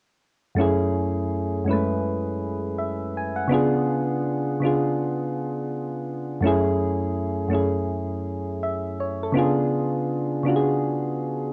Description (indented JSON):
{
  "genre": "hip hop",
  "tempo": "82 BPM",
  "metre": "4/4",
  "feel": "swing 59% on 16ths",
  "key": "F# minor",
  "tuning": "A4 = 440 Hz",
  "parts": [
    { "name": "soft electric-piano-like synth keys", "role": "accompaniment", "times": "0.5-11.5 s", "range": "F#2 to G#5", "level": "-25 LUFS", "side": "equal", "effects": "chorus, cassette tape, low-pass filter" }
  ],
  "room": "moderate studio reverb, RT60 0.5 s",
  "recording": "worn, warbling old tape, cassette tape, warbly pitch drift",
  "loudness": "-25 LUFS",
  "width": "mono",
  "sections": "0.6-11.5 A section",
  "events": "none",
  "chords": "0.6 F#m9; 3.5 C#7b9; 6.4 F#m9; 9.4 C#7b9"
}